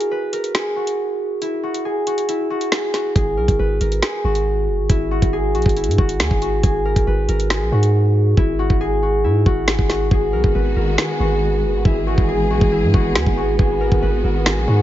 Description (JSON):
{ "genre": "hip hop, drill", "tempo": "138 BPM", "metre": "4/4", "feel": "half-time", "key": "G# minor", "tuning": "A4 = 437 Hz", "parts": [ { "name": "concert harp", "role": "melody", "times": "0.0-14.8 s", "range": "E4 to B4", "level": "-20 LUFS", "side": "equal", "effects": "none" }, { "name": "drill drum kit", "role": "drums", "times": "0.0-14.6 s", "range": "finger snaps, hi-hat, kick drum, snare drum", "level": "-19 LUFS", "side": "equal", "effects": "none" }, { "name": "long sustained 808-style bass", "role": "bass", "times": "3.2-14.8 s", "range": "F#1 to G#2", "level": "-20 LUFS", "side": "equal", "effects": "none" }, { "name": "warm symphonic string section", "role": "sustained chords", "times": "10.1-14.8 s", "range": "D#3 to G#4", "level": "-24 LUFS", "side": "equal", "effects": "none" } ], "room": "small room reverb", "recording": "nothing above 7.6 kHz", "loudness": "-16 LUFS", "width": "side -12 dB against mid", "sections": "0.0-14.8 A section", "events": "break 0.0-3.2; hi-hats muted 8.4-10.1, 10.1-14.8", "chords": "0.0 N.C.; 3.2 G#7(no3); 4.9 F#9/G#; 6.6 G#7sus2; 8.4 Eadd9/G#; 10.1 G#m7; 11.9 E/G#; 13.6 G#m7" }